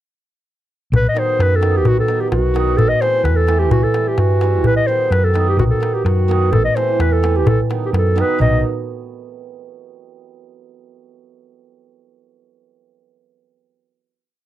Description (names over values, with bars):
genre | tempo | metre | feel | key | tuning
balkan folk, Balkan wedding band | 128 BPM | 2/4 | straight | B phrygian dominant | A4 = 440 Hz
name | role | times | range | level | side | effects
hollow-body short-scale fingered electric bass | bass | 0.9-8.6 s | A1 to G2 | -17 LUFS | equal | none
darbuka | percussion | 0.9-8.6 s | none | -20 LUFS | left 2 dB | none
dark clarinet | melody | 1.0-8.6 s | F#4 to D#5 | -18 LUFS | left 2 dB | none
cimbalom | accompaniment | 1.1-8.6 s | D#3 to E4 | -22 LUFS | right 10 dB | none
room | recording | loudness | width
little or no reverb | dry, close 1970s-style studio recording | -14 LUFS | side -13 dB against mid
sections
0.9-8.4 A section; 8.4-9.3 final chord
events
none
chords
0.9 B; 2.8 Am; 3.7 C; 4.7 B; 6.5 Am; 7.5 B